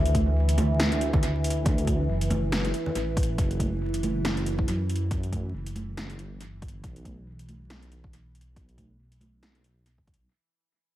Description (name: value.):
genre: deep dubstep.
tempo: 139 BPM.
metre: 4/4.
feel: swing 57% on 16ths, half-time.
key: unclear.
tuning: A4 = 439 Hz.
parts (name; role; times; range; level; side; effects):
overtone-sweeping drone; sustained chords; 0.0-10.3 s; E3; -32 LUFS; equal; chorus, built-in reverb.
dark detuned saw bass; bass; 0.0-10.3 s; F#1 to F#2; -28 LUFS; equal; none.
deep house drum kit; drums; 0.1-10.2 s; hi-hat, snare drum; -32 LUFS; equal; overdrive, tape echo.
electronic kick drum; drums; 0.1-10.2 s; none; -27 LUFS; equal; overdrive.
congas; percussion; 0.1-9.3 s; none; -32 LUFS; right 2 dB; dub echo.
room: light reverb, digital ambience.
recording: echo-heavy mix, vinyl crackle.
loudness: -24 LUFS.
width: side -14 dB against mid.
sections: 0.0-10.3 A section.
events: fade-out 0.0-10.3.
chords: 0.0 D; 3.4 Emadd9/F#; 6.8 Bsus4.